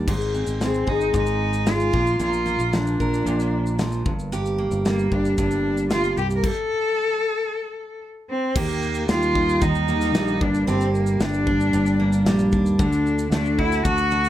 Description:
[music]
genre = acoustic pop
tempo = 113 BPM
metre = 4/4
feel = straight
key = unclear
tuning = A4 = 440 Hz
[part]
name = picked steel-string acoustic guitar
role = accompaniment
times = 0.0-14.3 s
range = G2 to Bb4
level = -23 LUFS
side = right 1 dB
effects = none
[part]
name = fingered electric bass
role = bass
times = 0.0-14.3 s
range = G1 to Eb2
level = -26 LUFS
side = equal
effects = none
[part]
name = modern studio drum kit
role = drums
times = 0.1-14.3 s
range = crash cymbal, kick drum, shaker, snare drum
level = -27 LUFS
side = left 1 dB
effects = none
[part]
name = clear cello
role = melody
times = 0.6-14.3 s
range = Bb3 to Bb4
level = -23 LUFS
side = left 1 dB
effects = none
[sound]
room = moderate studio reverb, RT60 0.5 s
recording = none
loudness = -19 LUFS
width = side -12 dB against mid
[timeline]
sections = 0.1-8.6 A section; 8.6-14.3 B section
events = stop 6.4-8.6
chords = 0.1 Ab; 1.9 Bb; 4.1 Gm; 6.4 N.C.; 8.6 Eb; 10.4 Gm; 12.8 D

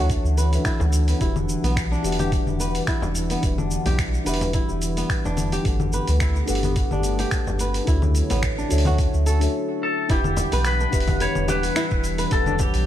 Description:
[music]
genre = organic downtempo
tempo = 108 BPM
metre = 4/4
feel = swing 54% on 16ths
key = E dorian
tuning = A4 = 439 Hz
[part]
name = muted felt-like synth keys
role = accompaniment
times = 0.0-12.9 s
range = D4 to F#5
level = -29 LUFS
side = left 2 dB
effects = chorus, vintage 12-bit sampler grit, sidechain pumping, tape echo
[part]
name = warbly tape-like pad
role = sustained chords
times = 0.0-12.9 s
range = D3 to F#5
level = -30 LUFS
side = equal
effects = chorus, built-in reverb, sidechain pumping
[part]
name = flamenco guitar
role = arpeggios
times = 0.0-12.5 s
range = B3 to B4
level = -30 LUFS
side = right 1 dB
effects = low-pass filter, tape echo
[part]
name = round analog bass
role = bass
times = 0.0-12.9 s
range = E1 to D2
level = -23 LUFS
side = equal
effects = sidechain pumping
[part]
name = dusty soul sampler-style drum kit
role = drums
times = 0.1-12.8 s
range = cabasa, congas, finger snaps, hi-hat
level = -29 LUFS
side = left 2 dB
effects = none
[part]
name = electronic kick drum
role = drums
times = 0.1-12.7 s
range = none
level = -24 LUFS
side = equal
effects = none
[part]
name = frame drum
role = percussion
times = 0.8-12.7 s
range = none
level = -31 LUFS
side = left 2 dB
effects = none
[part]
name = clean lap steel guitar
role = melody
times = 9.8-12.9 s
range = G4 to C#5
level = -25 LUFS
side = left 2 dB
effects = tape echo
[sound]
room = light reverb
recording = none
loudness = -19 LUFS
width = side -12 dB against mid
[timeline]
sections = 0.0-10.1 A section; 10.1-12.9 B section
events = stop 9.5-10.1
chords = 0.0 Dmaj9; 1.2 Em9; 5.7 Gmaj9; 7.9 Dmaj9; 10.1 Em9

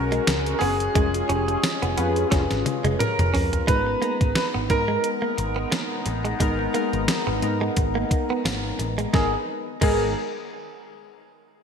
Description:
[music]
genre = 1980s-style pop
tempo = 88 BPM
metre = 4/4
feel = swing 55% on 16ths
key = G# dorian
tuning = A4 = 441 Hz
[part]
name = clear concert grand piano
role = melody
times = 0.0-10.1 s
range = G#4 to B4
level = -28 LUFS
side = right 2 dB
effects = analog chorus, ping-pong delay
[part]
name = warm analog keys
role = accompaniment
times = 0.0-10.1 s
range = G#3 to A#5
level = -28 LUFS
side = left 3 dB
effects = chorus
[part]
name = sweeping resonant pad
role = sustained chords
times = 0.0-9.5 s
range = G#3 to A#5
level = -33 LUFS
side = left 2 dB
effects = chorus, phaser
[part]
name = vintage muted picked electric bass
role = bass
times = 0.0-10.1 s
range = E#1 to G#2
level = -28 LUFS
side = equal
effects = none
[part]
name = direct-recorded clean electric guitar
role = riff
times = 0.1-10.0 s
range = G#3 to C#4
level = -31 LUFS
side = right 4 dB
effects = lush chorus, ping-pong delay
[part]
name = clean 12-bit digital drum machine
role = drums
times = 0.1-10.0 s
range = crash cymbal, hi-hat, kick drum, snare drum, tambourine, toms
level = -25 LUFS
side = equal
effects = gated reverb
[part]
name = mellow synth brass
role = stabs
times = 1.1-2.4, 9.1-10.1 s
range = D#3 to A#4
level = -32 LUFS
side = right 1 dB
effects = chorus, phaser, ping-pong delay
[sound]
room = moderate plate reverb, RT60 2.2 s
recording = bright 1980s-style digital production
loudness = -21 LUFS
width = side -6 dB against mid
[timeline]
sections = 0.0-3.7 A section; 3.7-9.1 B section; 9.1-11.6 C section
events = band accent 1.0-3.7; drum fill 2.3-3.7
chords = 0.0 F#sus2; 1.0 C#/E#; 3.7 G#madd9

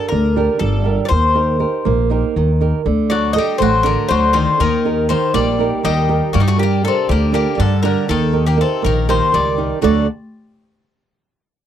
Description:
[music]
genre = greek folk, Greek bouzouki band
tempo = 241 BPM (eighths)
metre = 7/8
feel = straight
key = D phrygian dominant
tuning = A4 = 439 Hz
[part]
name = Greek bouzouki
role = melody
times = 0.0-10.1 s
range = Eb4 to Eb5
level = -19 LUFS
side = left 4 dB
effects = none
[part]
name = flamenco guitar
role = accompaniment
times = 0.0-10.1 s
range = D3 to Bb4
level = -19 LUFS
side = right 10 dB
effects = none
[part]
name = upright bass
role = bass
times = 0.1-10.1 s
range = G1 to G2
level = -17 LUFS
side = left 1 dB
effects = none
[part]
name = Greek bouzouki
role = second line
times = 3.1-10.1 s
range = C3 to Bb3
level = -22 LUFS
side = left 9 dB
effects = none
[sound]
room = light reverb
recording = dry, close 1970s-style studio recording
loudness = -14 LUFS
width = side -10 dB against mid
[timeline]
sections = 0.0-9.8 A section; 9.8-11.6 B section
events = none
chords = 0.0 Gm; 1.1 Eb; 2.9 D; 4.6 Eb; 6.3 Gm; 8.1 Eb; 9.8 D

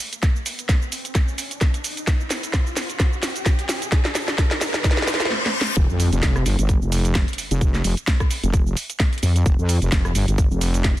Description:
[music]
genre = bass house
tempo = 130 BPM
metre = 4/4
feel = swing 56% on 16ths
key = unclear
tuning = A4 = 439 Hz
[part]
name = garage drum kit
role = drums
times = 0.0-11.0 s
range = hi-hat, rim click, shaker, snare drum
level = -24 LUFS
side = equal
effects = none
[part]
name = riser, reverse cymbal and impact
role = sound effects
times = 0.6-7.6 s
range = none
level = -30 LUFS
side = equal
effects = none
[part]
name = electronic kick drum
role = drums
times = 0.2-10.9 s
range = none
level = -19 LUFS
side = equal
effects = none
[part]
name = wobble bass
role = bass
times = 5.8-11.0 s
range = F1 to F2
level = -19 LUFS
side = equal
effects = chorus, sidechain pumping
[sound]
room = little or no reverb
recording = dense, heavily limited modern master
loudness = -18 LUFS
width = side -15 dB against mid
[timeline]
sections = 0.0-5.8 A section; 5.8-11.0 B section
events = build-up 0.0-5.8; drum fill 0.0-5.3, 5.3-5.8; riser 0.6-5.3; reverse cymbal 4.8-5.8; drop 5.8-11.0; impact 5.8-7.6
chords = none

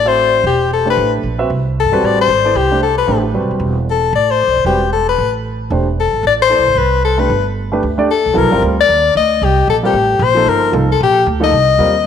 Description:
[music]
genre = modal jazz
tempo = 227 BPM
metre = 4/4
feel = swing 60% on 8ths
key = A dorian, C dorian from 8.3 s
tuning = A4 = 440 Hz
[part]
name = clear soprano saxophone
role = melody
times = 0.0-12.1 s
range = G4 to Eb5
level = -13 LUFS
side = left 6 dB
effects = none
[part]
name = warm grand piano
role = accompaniment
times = 0.0-11.9 s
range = F3 to E5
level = -18 LUFS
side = right 2 dB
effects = none
[part]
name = upright bass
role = bass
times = 0.0-12.1 s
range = E1 to G2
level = -18 LUFS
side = right 2 dB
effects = none
[sound]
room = wet echo chamber reverb, RT60 1.9 s, small room ambience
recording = none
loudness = -11 LUFS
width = side -8 dB against mid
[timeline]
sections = 0.0-8.3 A section; 8.3-12.1 B section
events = none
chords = 0.0 Am9; 7.3 G; 8.3 Cm7

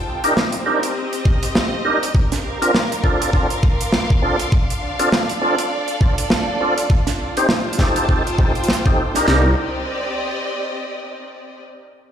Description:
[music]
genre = glitch hop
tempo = 101 BPM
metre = 4/4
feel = swing 59% on 16ths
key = C dorian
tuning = A4 = 441 Hz
[part]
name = clear symphonic string section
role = texture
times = 0.0-11.6 s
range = C4 to D6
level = -24 LUFS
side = equal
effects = sidechain pumping
[part]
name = tonewheel organ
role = stabs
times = 0.2-9.5 s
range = C4 to C5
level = -21 LUFS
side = equal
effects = chorus vibrato, slow rotary speaker, vintage 12-bit sampler grit, sidechain pumping, low-pass filter, tape echo
[part]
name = modern studio drum kit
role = drums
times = 0.2-9.3 s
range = hi-hat, snare drum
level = -21 LUFS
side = right 1 dB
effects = none
[part]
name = drum and bass drum kit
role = drums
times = 1.3-9.4 s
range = kick drum, snare drum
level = -17 LUFS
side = equal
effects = none
[part]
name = formant-sweep wobble bass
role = bass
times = 9.3-9.6 s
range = C2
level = -14 LUFS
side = equal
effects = chorus, tube saturation
[sound]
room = moderate lush hall reverb, RT60 1.6 s, small room ambience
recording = played on a big sound system in a bare room, stone room reverb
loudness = -16 LUFS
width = side -9 dB against mid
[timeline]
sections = 0.0-9.3 A section; 9.3-11.7 B section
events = none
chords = 0.0 Cm7; 2.1 Bbmaj7; 4.5 Dm7; 6.9 F7; 9.3 Cm7

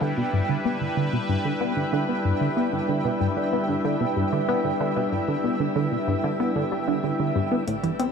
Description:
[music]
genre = ambient, sequencer-driven space music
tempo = 94 BPM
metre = 4/4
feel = straight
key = unclear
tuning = A4 = 440 Hz
[part]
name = sweeping resonant pad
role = sustained chords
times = 0.0-8.1 s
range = G3 to E5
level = -26 LUFS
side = left 1 dB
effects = chorus, shimmer reverb
[part]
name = tight sequenced synth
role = riff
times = 0.0-8.1 s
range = G2 to C4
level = -25 LUFS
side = equal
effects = chorus, analog delay, shimmer reverb
[part]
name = pulsing gated texture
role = texture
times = 0.0-8.1 s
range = G5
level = -34 LUFS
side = right 6 dB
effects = chorus, built-in reverb, shimmer reverb
[part]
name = fat analog bass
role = bass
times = 7.7-8.1 s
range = A1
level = -49 LUFS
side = left 1 dB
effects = none
[part]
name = electronic hi-hat and congas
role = percussion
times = 7.7-8.1 s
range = none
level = -34 LUFS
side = equal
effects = analog delay
[sound]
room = wet huge ambient reverb, RT60 7.7 s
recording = none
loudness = -22 LUFS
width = side -6 dB against mid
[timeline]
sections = 0.0-7.7 A section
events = filter sweep on synth arpeggio sound 0.0-7.7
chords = 0.0 G6

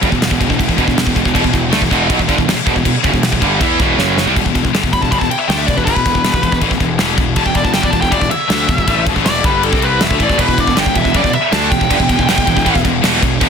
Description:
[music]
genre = heavy metal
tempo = 159 BPM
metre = 4/4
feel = straight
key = E minor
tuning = A4 = 440 Hz
[part]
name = high-gain distorted guitar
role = riff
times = 0.0-4.4, 10.4-13.5 s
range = E2 to E4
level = -18 LUFS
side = right 14 dB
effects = distortion
[part]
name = high-gain distorted guitar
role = riff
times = 0.0-13.5 s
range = E2 to E4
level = -21 LUFS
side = right 1 dB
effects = distortion
[part]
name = scooped high-gain guitar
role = riff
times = 0.0-13.5 s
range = E2 to E4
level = -19 LUFS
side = left 13 dB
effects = distortion
[part]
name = fuzz picked electric bass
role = bass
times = 0.0-13.5 s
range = E1 to E2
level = -20 LUFS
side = equal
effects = overdrive
[part]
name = modern studio drum kit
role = drums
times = 0.0-13.5 s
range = crash cymbal, kick drum, snare drum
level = -16 LUFS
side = equal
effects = none
[part]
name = nasal lead guitar with a parked wah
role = melody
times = 4.9-12.8 s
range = A4 to B5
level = -18 LUFS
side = equal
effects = overdrive
[sound]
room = studio reverb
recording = dense, heavily limited modern master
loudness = -11 LUFS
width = side -6 dB against mid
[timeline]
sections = 0.0-4.4 A section; 4.4-13.5 B section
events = drum fill 4.0-4.4; lead electric guitar solo 4.4-13.5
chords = 0.0 Em

